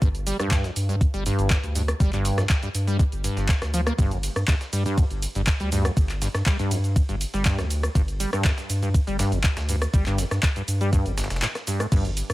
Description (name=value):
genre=acid house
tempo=121 BPM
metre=4/4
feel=straight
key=unclear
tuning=A4 = 441 Hz
part: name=liquid acid bass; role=riff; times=0.0-12.1 s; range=G1 to Bb3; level=-27 LUFS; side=equal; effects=tube saturation, analog chorus, tape echo
part: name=saturated sub bass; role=bass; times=0.0-12.3 s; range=F1 to G2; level=-26 LUFS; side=equal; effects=tube saturation, sidechain pumping
part: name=dusty soul sampler-style drum kit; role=drums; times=0.0-12.3 s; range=hi-hat, snare drum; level=-38 LUFS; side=equal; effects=none
part: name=electronic kick drum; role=drums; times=0.0-12.0 s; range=none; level=-21 LUFS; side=equal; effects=none
part: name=punchy analog drum machine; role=drums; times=0.0-12.3 s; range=crash cymbal, handclaps, hi-hat, ride cymbal, rim click, shaker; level=-29 LUFS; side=equal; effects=none
room=digital ambience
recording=none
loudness=-21 LUFS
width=side -17 dB against mid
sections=0.0-12.3 A section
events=none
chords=0.0 G5